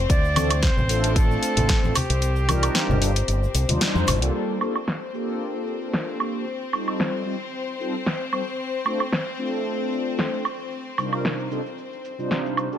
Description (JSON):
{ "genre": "nu-disco, nu disco", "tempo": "113 BPM", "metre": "4/4", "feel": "swing 54% on 16ths", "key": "G minor", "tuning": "A4 = 439 Hz", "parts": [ { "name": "rich chamber string section", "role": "sustained chords", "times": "0.0-12.8 s", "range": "C4 to C5", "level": "-31 LUFS", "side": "left 4 dB", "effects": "sidechain pumping" }, { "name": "fingered electric bass with an envelope filter", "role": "bass", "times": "0.0-4.3 s", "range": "G1 to F2", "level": "-23 LUFS", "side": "equal", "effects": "tube saturation" }, { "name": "bright reedy silver concert flute", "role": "melody", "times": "0.1-3.8 s", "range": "G4 to D5", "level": "-29 LUFS", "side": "right 1 dB", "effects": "vintage 12-bit sampler grit, ping-pong delay" }, { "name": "electronic kick drum", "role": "drums", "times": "0.1-1.8 s", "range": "none", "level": "-20 LUFS", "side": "equal", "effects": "none" }, { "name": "house drum kit", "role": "drums", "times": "0.1-12.8 s", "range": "hi-hat, shaker, snare drum, woodblock", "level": "-26 LUFS", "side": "right 1 dB", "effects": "low-pass filter on hats, low-pass filter on perc, low-pass filter on snare" }, { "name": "tube shaker and congas", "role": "percussion", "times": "0.1-4.3 s", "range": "none", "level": "-28 LUFS", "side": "left 1 dB", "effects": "none" }, { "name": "mellow synth brass", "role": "accompaniment", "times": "0.4-12.8 s", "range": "C3 to C5", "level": "-28 LUFS", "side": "equal", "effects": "chorus, sidechain pumping, digital delay" } ], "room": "light reverb, small room ambience", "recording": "none", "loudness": "-21 LUFS", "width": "side -10 dB against mid", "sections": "0.0-4.3 A section; 4.3-12.8 B section", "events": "kick drops out 2.2-4.3; band accent 3.8", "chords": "0.1 Dm7; 2.0 Cm11; 4.3 Gm7; 6.5 F7; 8.6 Dm7; 10.4 Cm11" }